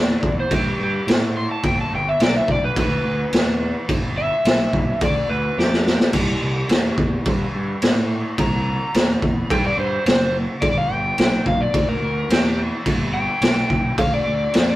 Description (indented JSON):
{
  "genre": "blues rock power trio and southern rock",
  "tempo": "107 BPM",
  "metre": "4/4",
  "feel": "straight",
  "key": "G mixolydian",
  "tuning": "A4 = 440 Hz",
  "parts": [
    { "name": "overdriven slide guitar", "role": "melody", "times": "0.0-14.8 s", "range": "G4 to C6", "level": "-23 LUFS", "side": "left 1 dB", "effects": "none" },
    { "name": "fuzz picked electric bass", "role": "bass", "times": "0.0-14.8 s", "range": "F#1 to A2", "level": "-25 LUFS", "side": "equal", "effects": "overdrive" },
    { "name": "raw garage drum kit", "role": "drums", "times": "0.2-14.7 s", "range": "crash cymbal, kick drum, snare drum", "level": "-19 LUFS", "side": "equal", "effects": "none" }
  ],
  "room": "light reverb",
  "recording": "rough rehearsal-room recording",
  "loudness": "-17 LUFS",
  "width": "side -16 dB against mid",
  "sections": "0.0-14.8 A section",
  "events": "electric slide guitar solo 0.0-14.8; drum fill 5.6-6.1",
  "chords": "0.0 C (rootless); 1.6 G; 6.1 C; 10.6 G",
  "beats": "0.52 1.08 | 1.65 2.21 2.77 3.33 | 3.90 4.46 5.02 5.58 | 6.14 6.70 7.26 7.83 | 8.39 8.95 9.51 10.07 | 10.63 11.19 11.75 12.31 | 12.87 13.43 13.99 14.55"
}